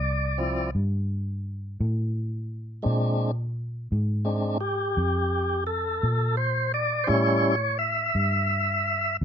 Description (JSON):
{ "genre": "slow blues", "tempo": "57 BPM (dotted quarters)", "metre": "12/8", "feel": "straight", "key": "D minor", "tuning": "A4 = 445 Hz", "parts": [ { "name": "tonewheel organ", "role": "sustained chords", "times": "0.0-9.2 s", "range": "F3 to E5", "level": "-24 LUFS", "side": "equal", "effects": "slow rotary speaker" }, { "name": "vintage muted fingered electric bass", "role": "bass", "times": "0.0-9.2 s", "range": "C2 to Bb2", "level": "-27 LUFS", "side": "equal", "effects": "none" } ], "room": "little or no reverb", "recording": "none", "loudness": "-23 LUFS", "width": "side -8 dB against mid", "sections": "0.0-9.2 A section", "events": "tonewheel organ solo 0.0-9.2", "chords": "0.0 Dm7; 2.9 Bb7; 7.1 A7" }